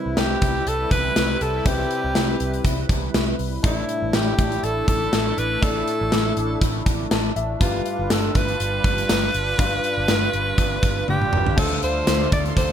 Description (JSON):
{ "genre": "1980s-style pop", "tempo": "121 BPM", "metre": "4/4", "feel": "swing 55% on 16ths", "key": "unclear", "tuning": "A4 = 440 Hz", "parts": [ { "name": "bright alto saxophone", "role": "melody", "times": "0.0-12.7 s", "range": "E4 to D5", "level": "-24 LUFS", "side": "right 1 dB", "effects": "ping-pong delay" }, { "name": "warm grand piano", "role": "accompaniment", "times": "0.0-12.7 s", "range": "G2 to A5", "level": "-30 LUFS", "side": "left 5 dB", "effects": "none" }, { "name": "sweeping resonant pad", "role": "sustained chords", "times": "0.0-12.7 s", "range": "C3 to C6", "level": "-29 LUFS", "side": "right 1 dB", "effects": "chorus" }, { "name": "vintage muted picked electric bass", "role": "bass", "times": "0.1-12.7 s", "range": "G1 to D2", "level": "-27 LUFS", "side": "equal", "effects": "none" }, { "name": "gated 80s drum kit", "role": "drums", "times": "0.2-12.7 s", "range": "crash cymbal, hi-hat, kick drum, snare drum, tambourine, toms", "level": "-21 LUFS", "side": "equal", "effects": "gated reverb" }, { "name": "overdriven semi-hollow guitar", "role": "accompaniment", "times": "11.6-12.7 s", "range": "D3 to D4", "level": "-32 LUFS", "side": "left 1 dB", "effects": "none" } ], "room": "light reverb, studio reverb", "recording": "none", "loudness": "-19 LUFS", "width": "side -9 dB against mid", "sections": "0.0-11.6 A section; 11.6-12.7 B section", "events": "drum fill 11.1-11.6", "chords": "0.0 Cmaj7; 3.6 Asus4; 7.6 G7; 11.6 Dm7", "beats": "0.17 0.67 1.16 | 1.66 2.15 2.65 3.15 | 3.64 4.14 4.63 5.13 | 5.62 6.12 6.62 7.11 | 7.61 8.10 8.60 9.10 | 9.59 10.09 10.58 11.08 | 11.57 12.07 12.57" }